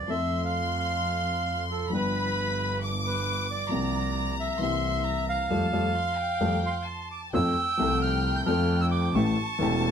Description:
tango; 133 BPM; 4/4; rubato; F major; A4 = 440 Hz
bandoneon; melody; 0.0-9.9 s; A4 to G6; -30 LUFS; right 2 dB
clear chamber violin section; second line; 0.1-9.9 s; G5 to D6; -33 LUFS; left 3 dB
warm upright piano; accompaniment; 0.1-9.9 s; E1 to A4; -29 LUFS; left 3 dB
clear double bass; bass; 0.1-9.9 s; E1 to F2; -31 LUFS; right 2 dB
light reverb; -24 LUFS; side -8 dB against mid
0.0-7.3 A section; 7.3-9.9 B section
band accent 5.5-7.3
0.1 F; 1.9 G7; 3.7 C7sus4; 4.6 C7; 5.5 Fadd9; 7.3 F; 9.2 A7

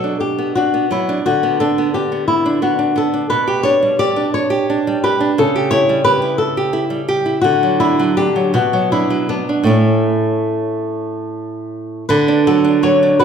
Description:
romantic duo for nylon-string guitar and classical guitar; 48-60 BPM (dotted quarters); 6/8; rubato; B minor, D major from 3.3 s; A4 = 440 Hz
flamenco guitar; melody; 0.0-13.2 s; C#4 to D5; -16 LUFS; left 3 dB
nylon-string guitar; accompaniment; 0.0-13.2 s; A2 to G4; -16 LUFS; right 3 dB
wet recital hall reverb, RT60 1.3 s; recorded in a church or concert hall; -13 LUFS; side -7 dB against mid
0.0-12.1 A section; 12.1-13.2 B section
0.0 Bm; 1.3 Bm/D; 3.3 G/B; 5.4 C#dim; 7.4 D; 8.5 Bm; 9.7 A; 12.1 D

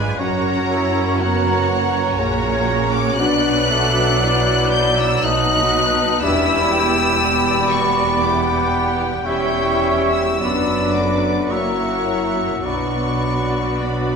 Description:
classical, slow romantic movement for symphony orchestra; 50-62 BPM; 3/4; rubato; B minor; A4 = 440 Hz
warm symphonic violin section; melody; 0.0-14.2 s; F#5 to G6; -23 LUFS; left 2 dB
clear studio violin section; second line; 0.0-14.2 s; E4 to G5; -26 LUFS; left 2 dB
warm oboe; second line; 0.0-14.2 s; Cb5 to E5; -26 LUFS; right 1 dB
mellow bassoon; accompaniment; 0.0-14.2 s; C#3 to Ab3; -25 LUFS; right 2 dB
rich symphonic viola section; accompaniment; 0.0-14.2 s; A3 to Ab4; -25 LUFS; right 2 dB
rich studio cello section; bass; 0.0-14.2 s; E2 to B2; -24 LUFS; right 2 dB
rich symphonic double bass section; bass; 0.0-14.2 s; E1 to B1; -27 LUFS; right 3 dB
mellow clarinet; second line; 0.2-14.2 s; A#4 to G5; -26 LUFS; left 2 dB
mellow hollow small flute group; second line; 0.2-14.2 s; F#5 to C#6; -25 LUFS; left 1 dB
clear French horn section; sustained chords; 0.2-14.2 s; F#3 to E4; -25 LUFS; left 4 dB
wet scoring stage reverb, RT60 2.0 s; minimal, uncompressed stereo recording; -15 LUFS; side -5 dB against mid
0.0-14.2 A section
0.2 F#; 3.2 Bm; 5.2 B7; 6.2 Em7; 9.2 C#dim/E; 10.4 Bm/F#; 11.5 F#7; 12.6 Bm

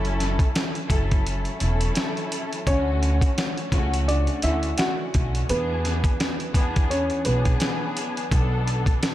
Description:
hip hop, boom-bap hip-hop; 85 BPM; 4/4; swing 59% on 16ths; A4 = 438 Hz
warm symphonic string section; accompaniment; 0.0-9.1 s; B2 to A4; -29 LUFS; left 1 dB; high-pass filter, low-pass filter
upright bass; bass; 0.0-8.9 s; E1 to E2; -25 LUFS; equal
dusty soul sampler-style drum kit; drums; 0.0-9.1 s; hi-hat, kick drum, snare drum; -24 LUFS; equal
dark upright piano; melody; 2.7-8.3 s; B3 to F#5; -28 LUFS; equal; high-pass filter, low-pass filter, diffuse ambient delay
light reverb, small room ambience; -21 LUFS; side -14 dB against mid
0.0-2.7 A section; 2.7-9.1 A section
break 1.3-2.7
0.0 F#m7; 2.7 Dmaj7; 5.5 E7; 8.3 Bm7

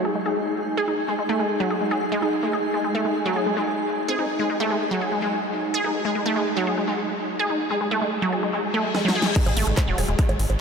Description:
psychedelic trance; 145 BPM; 4/4; straight; A4 = 440 Hz
wide unison pluck; riff; 0.0-10.3 s; F#3 to G#4; -23 LUFS; right 1 dB; auto-pan, sidechain pumping, diffuse ambient delay
granular cloud pad; texture; 0.0-8.5 s; D#4 to G#5; -28 LUFS; equal; built-in reverb, sidechain pumping
formant-sweep wobble bass; second line; 4.1-6.0 s; G#3 to B#3; -36 LUFS; right 1 dB
reverse cymbal and impact; sound effects; 8.7-10.6 s; -31 LUFS; left 4 dB
big-room dance drum kit; drums; 8.9-10.6 s; bongos, crash cymbal, handclaps, hi-hat, snare drum; -26 LUFS; equal
electronic kick drum; drums; 9.4-10.3 s; -21 LUFS; equal
round analog bass; bass; 9.5-10.6 s; D#1 to G#1; -24 LUFS; equal
wet huge ambient reverb, RT60 7.5 s; dreamy mix soaked in reverb; -21 LUFS; side -6 dB against mid
0.0-9.4 A section; 9.4-10.6 B section
filter sweep on synth arpeggio sound 0.0-9.4; reverse cymbal 8.7-9.4; drum fill 8.9-9.4; drop 9.4-10.6; impact 9.4-10.6
0.0 G#5

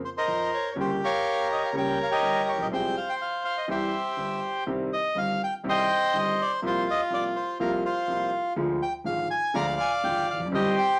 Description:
tango; 123 BPM; 4/4; rubato; C minor from 4.7 s; A4 = 440 Hz
bandoneon; melody; 0.0-11.0 s; F4 to Bb5; -28 LUFS; equal
warm concert grand piano; accompaniment; 0.3-10.7 s; G1 to Ab4; -32 LUFS; equal
wet studio ambience, RT60 0.5 s; -27 LUFS; mono
0.0-4.7 A section; 4.7-11.0 B section
0.0 Bbmadd9; 0.8 Gdim; 2.7 Fm/C; 3.7 C; 4.7 Cm; 6.6 Fsus4/C; 8.6 Ddim

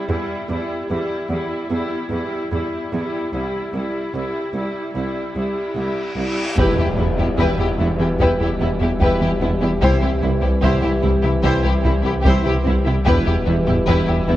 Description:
cinematic, hybrid orchestral and electronic film score; 74 BPM; 4/4; straight; E minor; A4 = 443 Hz
rich symphonic viola section; accompaniment; 0.0-14.4 s; G3 to E4; -25 LUFS; equal
bright symphonic cello section; bass; 0.1-14.4 s; C2 to E2; -24 LUFS; right 2 dB
reverse cymbal and impact; sound effects; 6.0-9.8 s; -28 LUFS; left 1 dB
rich studio violin section; melody; 6.6-14.4 s; E4 to C5; -25 LUFS; left 3 dB
rich symphonic violin section; second line; 6.6-14.4 s; B3 to G4; -27 LUFS; left 2 dB
bright trombone section; sustained chords; 6.6-14.4 s; B2 to E3; -26 LUFS; right 1 dB
dark French horn section; sustained chords; 6.6-14.4 s; G3 to G4; -26 LUFS; left 2 dB
rubbery square bass; riff; 6.6-14.4 s; C2 to E3; -24 LUFS; equal
pure sine sub bass; bass; 6.6-14.4 s; E1 to C2; -24 LUFS; equal
rich symphonic double bass section; bass; 6.6-14.4 s; E1 to C2; -25 LUFS; right 2 dB
taiko ensemble; drums; 6.6-14.4 s; -25 LUFS; equal
moderate concert hall reverb, RT60 2.4 s; worn, warbling old tape, cassette tape, warbly pitch drift; -17 LUFS; side -14 dB against mid
0.0-6.6 A section; 6.6-14.4 B section
build-up 0.0-6.6; reverse cymbal 6.0-6.6; impact 6.6-9.8
0.1 Em; 3.3 C; 6.6 Em; 9.8 C; 13.1 Em

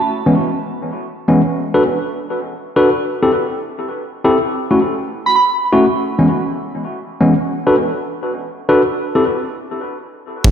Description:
drum and bass, jungle; 162 BPM; 4/4; straight; A4 = 439 Hz
tine electric piano; stabs; 0.3-9.2 s; E3 to B4; -15 LUFS; left 1 dB; vintage 12-bit sampler grit, dub echo
soft synth bell; melody; 5.3-5.4 s; B5; -17 LUFS; right 4 dB; chorus, phaser, vintage 12-bit sampler grit, dub echo
long sustained 808-style bass; bass; 10.4-10.5 s; F#1; -11 LUFS; equal; tube saturation
jungle sampler-style drum kit; drums; 10.4-10.5 s; hi-hat, kick drum; -13 LUFS; equal
wet lush hall reverb, RT60 2.0 s, digital ambience; played on a big sound system in a bare room, stone room reverb; -14 LUFS; side -8 dB against mid
0.0-10.4 A section
break 9.7-10.4
0.1 C#m7; 1.6 Bm7; 3.0 Am7; 4.5 F#m7; 6.0 C#m7; 7.5 Bm7; 9.0 Am7

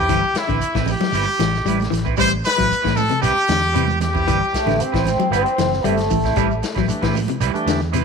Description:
afrobeat; 115 BPM; 4/4; straight; A dorian; A4 = 440 Hz
brilliant horn section; melody; 0.0-5.0 s; E4 to C5; -20 LUFS; left 1 dB
clean electric guitar; stabs; 0.0-8.0 s; G3 to B4; -26 LUFS; right 14 dB; wide subtle chorus
fingered electric bass; bass; 0.0-8.0 s; F#1 to A2; -23 LUFS; right 1 dB
electric guitar at the edge of break-up; arpeggios; 0.1-8.0 s; C3 to G3; -24 LUFS; left 13 dB
vintage drum kit; drums; 0.1-8.0 s; hi-hat, kick drum, snare drum; -27 LUFS; left 2 dB
shekere; percussion; 0.1-8.0 s; -30 LUFS; right 8 dB
congas; percussion; 0.9-8.0 s; -28 LUFS; right 15 dB
muted trombone section; second line; 4.5-6.9 s; A3 to C4; -21 LUFS; right 1 dB
bright tonewheel organ; accompaniment; 6.9-7.8 s; E3 to G4; -26 LUFS; right 2 dB; slow rotary speaker
light reverb, small room ambience; 1960s-style stereo with parts hard left and right; -16 LUFS; side -5 dB against mid
0.0-8.0 A section
0.0 Am9

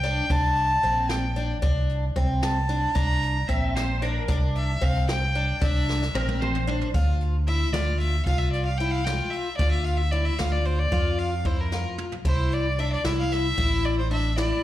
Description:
progressive instrumental, band music in an uneven meter; 226 BPM (eighths); 5/8; straight; D minor; A4 = 442 Hz
clear violin; melody; 0.0-14.6 s; Bb4 to Bb5; -28 LUFS; equal; slapback echo
picked twelve-string acoustic guitar; arpeggios; 0.0-14.6 s; C4 to F4; -30 LUFS; left 2 dB; slapback echo
fingered electric bass with an envelope filter; bass; 0.0-14.5 s; A1 to F2; -25 LUFS; equal
jazz brush drum kit; drums; 0.0-14.5 s; hi-hat, kick drum, snare drum, toms; -29 LUFS; equal
electric guitar at the edge of break-up; second line; 3.5-6.9 s; Bb4 to E5; -32 LUFS; right 2 dB; ensemble chorus, slapback echo
little or no reverb; live gig heard through the venue's PA, club reverb; -22 LUFS; side -14 dB against mid
0.0-6.9 A section; 6.9-14.6 B section
drum fill 5.9-6.9, 11.7-12.3; violin solo 6.9-14.6
0.0 C7(no3); 6.9 Dm; 9.6 Dmadd9; 12.3 Cadd9

